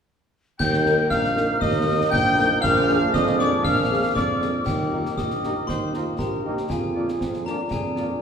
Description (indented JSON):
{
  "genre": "military-style march for wind band",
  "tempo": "118 BPM",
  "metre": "2/4",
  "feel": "straight",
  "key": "Eb major",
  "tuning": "A4 = 435 Hz",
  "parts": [
    { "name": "mellow cornet", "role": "melody", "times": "0.6-8.2 s", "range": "G4 to G5", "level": "-29 LUFS", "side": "right 1 dB", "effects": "none" },
    { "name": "clear woodwind section", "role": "second line", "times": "0.6-8.1 s", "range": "Bb4 to G5", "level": "-30 LUFS", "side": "equal", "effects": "none" },
    { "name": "glockenspiel with brass mallets", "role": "second line", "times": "0.6-8.2 s", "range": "G5 to G6", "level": "-28 LUFS", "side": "left 4 dB", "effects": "none" },
    { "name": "mellow wooden piccolo", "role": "second line", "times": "0.6-4.6 s", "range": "D6 to G6", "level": "-26 LUFS", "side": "left 5 dB", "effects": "none" },
    { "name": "bright trombone section", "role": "sustained chords", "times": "0.6-8.1 s", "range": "Ab3 to Eb4", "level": "-33 LUFS", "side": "right 3 dB", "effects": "none" },
    { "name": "warm tuba", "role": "bass", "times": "0.6-8.1 s", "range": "Bb1 to F2", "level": "-24 LUFS", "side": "right 2 dB", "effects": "none" },
    { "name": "concert snare drum, clash cymbals and concert bass drum", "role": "drums", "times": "0.6-8.1 s", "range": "none", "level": "-30 LUFS", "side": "equal", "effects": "none" },
    { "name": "mellow French horn section", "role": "accompaniment", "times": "0.9-8.1 s", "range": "Bb3 to Bb4", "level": "-30 LUFS", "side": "left 2 dB", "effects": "none" },
    { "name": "clear euphonium", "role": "second line", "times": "4.7-8.2 s", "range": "C4 to G4", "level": "-30 LUFS", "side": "right 2 dB", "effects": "none" }
  ],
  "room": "wet recital hall reverb, RT60 1.8 s",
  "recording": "recorded in a church or concert hall",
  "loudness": "-20 LUFS",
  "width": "side -7 dB against mid",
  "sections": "0.6-4.7 A section; 4.7-8.2 B section",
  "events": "none",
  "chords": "0.6 Eb; 2.6 Bb7; 4.7 Eb; 6.7 Bb7/F"
}